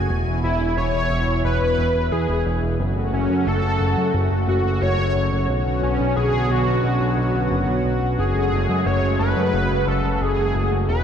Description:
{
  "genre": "synthwave",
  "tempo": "89 BPM",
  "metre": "4/4",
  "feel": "straight",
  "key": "F# minor",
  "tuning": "A4 = 440 Hz",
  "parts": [
    { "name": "lush unison pad", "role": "sustained chords", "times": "0.0-11.0 s", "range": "B2 to G#5", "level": "-24 LUFS", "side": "equal", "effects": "chorus" },
    { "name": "fat analog bass", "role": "bass", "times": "0.0-11.0 s", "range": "E1 to F#2", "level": "-22 LUFS", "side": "equal", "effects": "none" },
    { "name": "wide unison lead", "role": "melody", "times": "0.4-11.0 s", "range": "C#4 to C#5", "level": "-23 LUFS", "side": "equal", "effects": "analog chorus, cassette tape, ping-pong delay" }
  ],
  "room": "wet lush hall reverb, RT60 2.6 s",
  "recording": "dreamy mix soaked in reverb",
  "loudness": "-18 LUFS",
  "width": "side -8 dB against mid",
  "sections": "0.0-11.0 A section",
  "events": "none",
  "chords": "0.1 E; 2.8 F#m; 5.5 Bmadd9; 8.2 F#madd9",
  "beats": "| 0.10 0.77 1.45 2.12 | 2.79 3.47 4.14 4.82 | 5.49 6.17 6.84 7.51 | 8.19 8.86 9.54 10.21 | 10.88"
}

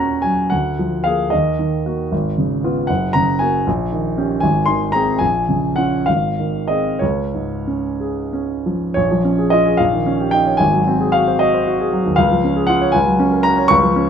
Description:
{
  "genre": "classical, romantic character piece for solo piano",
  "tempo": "61-80 BPM (dotted quarters)",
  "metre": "6/8",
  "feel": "rubato",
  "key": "Db major",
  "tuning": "A4 = 440 Hz",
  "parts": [
    { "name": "warm grand piano", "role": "solo", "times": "0.0-14.1 s", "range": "Gb1 to Db6", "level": "-15 LUFS", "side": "equal", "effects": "none" }
  ],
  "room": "light reverb",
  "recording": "minimal, uncompressed stereo recording",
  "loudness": "-15 LUFS",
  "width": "side -7 dB against mid",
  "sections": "0.0-9.0 A section; 9.0-14.1 B section",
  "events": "none",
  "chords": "0.0 Ebm7; 0.5 Bb7/D; 1.3 Ebm; 2.1 Db7/Ab; 2.9 Gb; 3.7 Eb7/Bb; 4.4 Ab; 5.2 Bbm7; 6.1 Ab; 7.0 Db; 9.0 Bbm7; 9.8 Eb7/Bb; 10.6 Ab7; 12.2 Db; 12.9 Gb/Db",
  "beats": "| 0.51 1.32 | 2.12 2.90 | 3.67 4.42 | 5.22 6.08 | 7.01 8.00 | 8.97 9.79 | 10.60 11.41 | 12.19 12.94 | 13.71"
}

